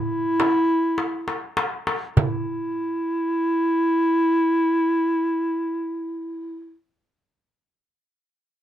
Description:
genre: Turkish makam ensemble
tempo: free time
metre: none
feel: none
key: unclear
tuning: A4 = 439 Hz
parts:
  - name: dark clarinet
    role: melody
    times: 0.0-6.8 s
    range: E4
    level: -21 LUFS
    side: equal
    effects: none
  - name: darbuka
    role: percussion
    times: 0.4-2.7 s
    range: none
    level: -25 LUFS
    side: left 2 dB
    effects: none
  - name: frame drum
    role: percussion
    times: 0.4-2.7 s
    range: none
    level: -25 LUFS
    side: right 6 dB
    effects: none
room: little or no reverb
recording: close, detailed microphones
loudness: -20 LUFS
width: side -11 dB against mid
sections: 0.0-2.2 A section; 2.2-8.3 B section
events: slowing down 0.0-2.2; drum fill 1.0-2.2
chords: none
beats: free time

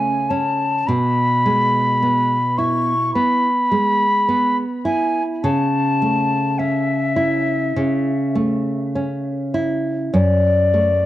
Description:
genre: romantic duo for flute and classical guitar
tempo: 52 BPM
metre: 4/4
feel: rubato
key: A major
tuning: A4 = 440 Hz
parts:
  - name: silver concert flute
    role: melody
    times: 0.0-11.1 s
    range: D5 to C#6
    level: -18 LUFS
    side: left 1 dB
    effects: none
  - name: nylon-string guitar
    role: accompaniment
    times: 0.0-11.1 s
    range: F#2 to E4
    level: -19 LUFS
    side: right 1 dB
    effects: none
room: moderate studio reverb, RT60 0.6 s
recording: worn, warbling old tape, cassette tape, warbly pitch drift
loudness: -16 LUFS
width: side -14 dB against mid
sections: 0.0-11.1 A section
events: none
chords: 0.0 A/C#; 0.9 E/B; 5.4 A/C#; 10.1 D/F#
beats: | 0.88 2.02 3.15 4.28 | 5.44 6.59 7.76 8.95 | 10.13

